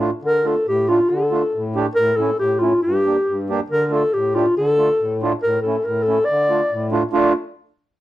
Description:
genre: klezmer.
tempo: 139 BPM.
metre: 2/4.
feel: straight.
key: D harmonic minor.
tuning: A4 = 440 Hz.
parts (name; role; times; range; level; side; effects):
mellow accordion; accompaniment; 0.0-7.3 s; G2 to G4; -21 LUFS; right 2 dB; none.
breathy clarinet; melody; 0.3-7.3 s; F4 to D5; -17 LUFS; left 1 dB; none.
room: moderate studio reverb, RT60 0.6 s.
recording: dark, warm production.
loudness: -16 LUFS.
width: side -14 dB against mid.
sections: 0.2-7.1 A section.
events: speeding up 0.0-8.0.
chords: 0.2 Dm; 2.0 A; 2.8 Gm; 3.7 Dm; 5.4 A; 6.3 Dm.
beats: | 0.22 0.66 | 1.10 1.53 | 1.97 2.41 | 2.84 3.28 | 3.71 4.14 | 4.57 5.00 | 5.43 5.86 | 6.29 6.71 | 7.14.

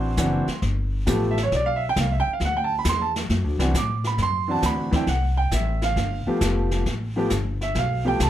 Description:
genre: jazz piano trio.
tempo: 135 BPM.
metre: 4/4.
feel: swing 68% on 8ths.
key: unclear.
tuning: A4 = 440 Hz.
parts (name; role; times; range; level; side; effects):
clear upright piano; melody; 0.0-8.3 s; E3 to D6; -24 LUFS; right 2 dB; none.
upright bass; bass; 0.0-8.3 s; F1 to A2; -24 LUFS; equal; none.
jazz brush drum kit; drums; 0.2-8.3 s; brushed snare drum, hi-hat, kick drum, snare drum; -28 LUFS; left 1 dB; none.
room: light reverb.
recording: none.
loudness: -21 LUFS.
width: side -12 dB against mid.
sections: 0.0-8.3 A section.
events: upright piano solo 0.0-8.3.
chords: 0.0 D9; 0.6 G9; 2.4 D9; 6.0 G9.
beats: 0.17 | 0.61 1.06 1.50 1.95 | 2.40 2.84 3.29 3.73 | 4.18 4.62 5.07 5.51 | 5.96 6.41 6.85 7.30 | 7.74 8.19.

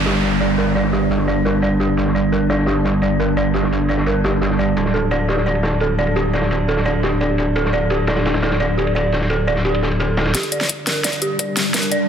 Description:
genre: dark technical drum and bass.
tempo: 172 BPM.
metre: 4/4.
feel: straight.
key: unclear.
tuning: A4 = 440 Hz.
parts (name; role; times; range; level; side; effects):
deep dark ambient pad; sustained chords; 0.0-12.1 s; G3 to A5; -21 LUFS; right 1 dB; chorus, built-in reverb, sidechain pumping.
metallic wobble bass; bass; 0.0-10.3 s; D1 to G1; -20 LUFS; equal; chorus, tube saturation.
downlifter and riser; sound effects; 0.0-2.0, 10.9-12.1 s; none; -27 LUFS; equal; none.
dark detuned synth bell; arpeggios; 0.1-12.0 s; G4 to D5; -22 LUFS; right 2 dB; chorus, sidechain pumping, low-pass filter, tape echo.
crunchy breakbeat drum kit; drums; 0.1-10.3 s; ride cymbal, snare drum; -26 LUFS; equal; high-pass filter on cymbals, low-pass filter on cymbals, studio reverb, high-pass filter on snare, low-pass filter on snare, high-pass filter on room, low-pass filter on room.
dubstep drum kit; drums; 10.3-12.0 s; hi-hat, snare drum; -20 LUFS; left 1 dB; overdrive, high-pass filter on hats, low-pass filter on hats, studio reverb, high-pass filter on snare, low-pass filter on snare, high-pass filter on toms, low-pass filter on toms.
electronic kick drum; drums; 10.3-11.8 s; none; -32 LUFS; equal; none.
room: moderate lush hall reverb, RT60 1.8 s.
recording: dense, heavily limited modern master.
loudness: -16 LUFS.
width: side -8 dB against mid.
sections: 0.0-10.3 A section; 10.3-12.1 B section.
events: filter sweep on drum 0.0-10.3; build-up 10.3-12.1; drum fill 10.3-12.1; filter sweep on synth bell 10.3-12.1.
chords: 0.0 G5; 4.8 D5; 10.3 G5.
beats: 0.23 | 0.58 0.93 1.28 1.62 | 1.97 2.32 2.67 3.02 | 3.37 3.72 4.07 4.42 | 4.76 5.11 5.46 5.81 | 6.16 6.51 6.86 7.21 | 7.55 7.90 8.25 8.60 | 8.95 9.30 9.65 10.00 | 10.35 10.70 11.04 11.39 | 11.74.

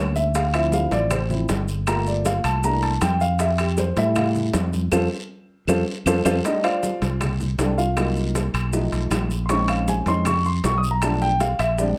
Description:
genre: Afro-Cuban jazz.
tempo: 157 BPM.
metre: 4/4.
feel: straight.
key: F major.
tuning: A4 = 441 Hz.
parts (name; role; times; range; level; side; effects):
dark grand piano; accompaniment; 0.0-12.0 s; F3 to Eb6; -25 LUFS; equal; none.
fingered electric bass; bass; 0.0-11.9 s; G1 to A2; -26 LUFS; equal; none.
bongos; percussion; 0.2-12.0 s; none; -34 LUFS; equal; none.
congas; percussion; 0.2-12.0 s; none; -33 LUFS; equal; none.
guiro; percussion; 0.2-12.0 s; none; -44 LUFS; equal; none.
maracas; percussion; 0.2-12.0 s; none; -38 LUFS; equal; none.
timbales; percussion; 0.4-11.8 s; none; -34 LUFS; equal; none.
claves; percussion; 0.5-11.8 s; none; -37 LUFS; equal; none.
room: moderate club reverb, RT60 0.6 s.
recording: none.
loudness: -22 LUFS.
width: mono.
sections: 0.0-6.4 A section; 6.4-12.0 A section.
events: grand piano solo 0.0-12.0; drum fill 4.9-6.4; band accent 4.9-6.4.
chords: 0.3 Dm9; 1.9 Gm7; 2.6 C13; 3.4 Fmaj9; 6.4 F69; 8.0 Cm7b5; 8.7 B7#11; 9.5 Bbm11; 11.0 Bm7b5.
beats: | 0.34 0.73 1.11 1.49 | 1.87 2.25 2.63 3.02 | 3.40 3.78 4.16 4.54 | 4.92 5.30 5.68 6.07 | 6.45 6.83 7.21 7.59 | 7.97 8.35 8.73 9.12 | 9.50 9.88 10.26 10.64 | 11.02 11.40 11.78.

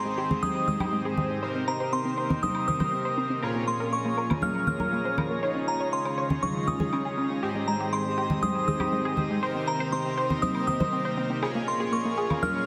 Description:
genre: progressive house.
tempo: 120 BPM.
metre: 4/4.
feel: straight.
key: Ab major.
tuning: A4 = 439 Hz.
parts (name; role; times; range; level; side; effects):
glassy synth bell; melody; 0.0-12.7 s; Bb5 to F6; -32 LUFS; equal; chorus, tape echo.
lush unison pad; sustained chords; 0.0-12.7 s; Eb3 to G5; -37 LUFS; equal; chorus.
soft supersaw; stabs; 0.0-12.7 s; Ab2 to Db5; -34 LUFS; equal; none.
drifting glass-harmonics texture; texture; 0.4-12.7 s; Eb5 to Eb6; -46 LUFS; equal; chorus, built-in reverb.
tight sequenced synth; arpeggios; 0.1-12.5 s; Ab3 to Db5; -34 LUFS; equal; chorus, phaser, cassette tape, tape echo.
woodblock and congas; percussion; 0.2-12.7 s; none; -33 LUFS; equal; none.
room: wet lush hall reverb, RT60 2.2 s.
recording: dense, heavily limited modern master.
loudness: -27 LUFS.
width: mono.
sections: 0.0-12.7 A section.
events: filter sweep on synth arpeggio sound 0.0-12.7.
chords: 0.0 Abmaj7; 1.4 Cm7; 3.4 Bbm7; 5.4 Dbadd9; 7.4 Abmaj7; 9.4 Cm7; 11.4 Bbm7.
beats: 0.43 0.93 | 1.43 1.93 2.43 2.93 | 3.43 3.93 4.43 4.93 | 5.43 5.93 6.43 6.93 | 7.43 7.93 8.43 8.93 | 9.43 9.93 10.43 10.93 | 11.43 11.93 12.43.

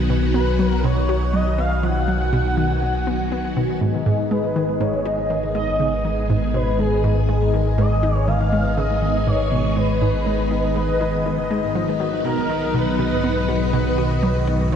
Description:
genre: ambient, sequencer-driven space music.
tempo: 121 BPM.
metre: 4/4.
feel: straight.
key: G# minor.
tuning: A4 = 442 Hz.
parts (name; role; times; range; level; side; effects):
phased string machine; sustained chords; 0.0-14.8 s; D#3 to G#4; -24 LUFS; equal; ensemble chorus, phaser.
analog drone; bass; 0.0-14.8 s; G#1 to B1; -23 LUFS; equal; chorus.
bubbling stepped-filter texture; texture; 0.0-14.8 s; D#5 to G#5; -35 LUFS; equal; chorus, built-in reverb.
analog pluck; riff; 0.1-14.8 s; G#2 to F#4; -24 LUFS; right 1 dB; chorus, ping-pong delay.
expressive portamento lead; melody; 0.3-14.8 s; G#4 to F#5; -25 LUFS; equal; ensemble chorus, ping-pong delay.
concert harp; arpeggios; 3.8-14.8 s; G#2 to G#4; -26 LUFS; moving between left 8 dB and right 1 dB; auto-pan, ping-pong delay.
room: moderate plate reverb, RT60 3.4 s.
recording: echo-heavy mix.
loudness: -18 LUFS.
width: side -8 dB against mid.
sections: 0.0-14.8 A section.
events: fade-in on synth texture 0.0-14.8.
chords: 0.0 B; 3.8 G#m; 11.7 B.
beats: 0.34 0.84 1.34 | 1.83 2.33 2.82 3.32 | 3.81 4.31 4.81 5.30 | 5.80 6.29 6.79 7.29 | 7.78 8.28 8.77 9.27 | 9.77 10.26 10.76 11.25 | 11.75 12.24 12.74 13.24 | 13.73 14.23 14.72.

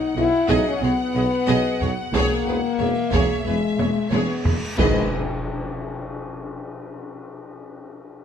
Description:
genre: cinematic, epic orchestral film score.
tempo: 91 BPM.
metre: 4/4.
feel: straight.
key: unclear.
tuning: A4 = 445 Hz.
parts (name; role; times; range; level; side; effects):
rich symphonic violin section; melody; 0.0-5.1 s; D#5 to F#5; -31 LUFS; left 4 dB; none.
mellow French horn section; sustained chords; 0.0-5.1 s; G#3 to E4; -23 LUFS; left 4 dB; none.
warm symphonic violin section; second line; 0.2-5.1 s; B4 to D#5; -30 LUFS; left 2 dB; none.
rich studio viola section; accompaniment; 0.2-5.2 s; G#4; -28 LUFS; right 2 dB; none.
rich symphonic double bass section; bass; 0.2-5.2 s; E1 to B1; -29 LUFS; right 5 dB; none.
warm symphonic cello section; bass; 0.2-5.1 s; E2 to B2; -28 LUFS; right 4 dB; none.
warm tuba; bass; 0.2-5.1 s; E1 to B1; -30 LUFS; right 5 dB; none.
taiko ensemble; drums; 0.5-6.1 s; none; -24 LUFS; equal; none.
cymbal swell and tam-tam; percussion; 2.1-7.4 s; none; -31 LUFS; left 3 dB; none.
reverse cymbal and impact; sound effects; 4.3-7.4 s; none; -35 LUFS; right 1 dB; none.
room: light reverb.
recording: close, detailed microphones.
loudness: -19 LUFS.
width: side -8 dB against mid.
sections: 0.0-4.8 A section; 4.8-7.4 B section.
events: drum fill 3.8-4.8; reverse cymbal 4.3-4.8; band accent 4.8-5.4; impact 4.8-7.4.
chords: 0.0 B6; 2.1 E6; 4.8 N.C..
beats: 0.17 0.83 1.49 | 2.15 2.81 3.46 4.12 | 4.78 5.44 6.10 6.75.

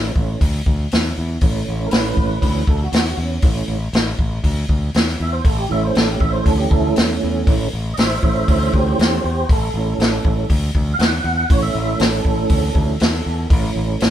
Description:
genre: blues rock power trio and southern rock.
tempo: 119 BPM.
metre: 4/4.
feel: straight.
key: A mixolydian.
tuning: A4 = 440 Hz.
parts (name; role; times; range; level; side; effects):
tonewheel organ; sustained chords; 0.0-14.1 s; E3 to F#5; -21 LUFS; right 4 dB; slow rotary speaker, chorus vibrato.
growling fingered electric bass; bass; 0.0-14.1 s; A1 to E2; -21 LUFS; equal; overdrive.
vintage drum kit; drums; 0.2-14.1 s; hi-hat, kick drum, snare drum; -18 LUFS; equal; none.
room: light reverb.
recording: band playing live in one room.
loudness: -15 LUFS.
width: side -11 dB against mid.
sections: 0.0-14.1 A section.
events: tonewheel organ solo 0.0-14.1.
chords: 0.0 A.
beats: 0.41 0.91 | 1.42 1.93 2.43 2.94 | 3.44 3.94 4.45 4.95 | 5.46 5.96 6.47 6.97 | 7.47 7.98 8.48 8.99 | 9.49 9.99 10.49 11.00 | 11.50 12.00 12.51 13.01 | 13.51 14.01.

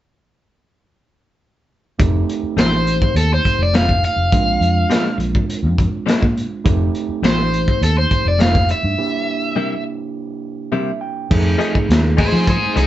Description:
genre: straight-eighth soul blues.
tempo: 103 BPM.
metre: 4/4.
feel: straight.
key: F mixolydian.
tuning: A4 = 440 Hz.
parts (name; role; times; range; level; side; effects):
overdriven tine electric piano; accompaniment; 2.0-12.9 s; C3 to G5; -24 LUFS; right 6 dB; none.
vintage muted fingered electric bass; bass; 2.0-12.9 s; F1 to F3; -18 LUFS; equal; none.
crunchy breakbeat drum kit; drums; 2.0-12.9 s; crash cymbal, hi-hat, kick drum, snare drum; -18 LUFS; equal; none.
overdriven electric guitar; melody; 2.6-12.9 s; Eb4 to F5; -19 LUFS; equal; none.
direct-recorded clean electric guitar; stabs; 2.6-12.9 s; F2 to G#4; -22 LUFS; left 4 dB; none.
room: moderate studio reverb, RT60 0.6 s.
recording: band playing live in one room, nothing above 7.8 kHz.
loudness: -15 LUFS.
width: side -13 dB against mid.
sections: 2.0-11.3 A section; 11.3-12.9 B section.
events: break 9.0-11.3; tine electric piano fill 10.4-11.3.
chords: 2.0 F7; 4.3 Bb7; 6.7 F7; 9.0 C7; 11.3 F7#9.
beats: | 1.99 2.57 3.16 3.74 | 4.32 4.90 5.49 6.07 | 6.65 7.23 7.82 8.40 | 8.98 9.56 10.14 10.73 | 11.31 11.89 12.47.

